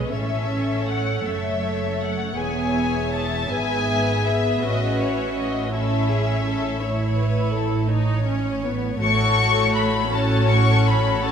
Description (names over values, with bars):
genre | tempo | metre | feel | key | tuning
classical, slow romantic movement for string orchestra | 54 BPM (dotted quarters) | 12/8 | rubato | unclear | A4 = 440 Hz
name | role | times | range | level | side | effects
dark studio violin section | melody | 0.0-11.3 s | C#5 to C#6 | -25 LUFS | left 5 dB | none
dark studio violin section | second line | 0.0-11.3 s | F#4 to E5 | -28 LUFS | left 4 dB | none
rich studio viola section | accompaniment | 0.0-11.3 s | A3 to A4 | -26 LUFS | right 2 dB | none
dark studio double bass section | bass | 0.0-11.3 s | E1 to B1 | -26 LUFS | right 2 dB | none
warm studio cello section | bass | 0.0-11.3 s | E2 to B2 | -26 LUFS | right 2 dB | none
room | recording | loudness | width
moderate scoring stage reverb, RT60 2.0 s | none | -19 LUFS | side -7 dB against mid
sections
0.0-11.3 A section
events
none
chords
0.1 A; 2.4 E; 4.6 A; 9.0 F#m/A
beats
| 0.12 1.24 2.36 3.49 | 4.62 5.72 6.80 7.88 | 9.00 10.11 11.21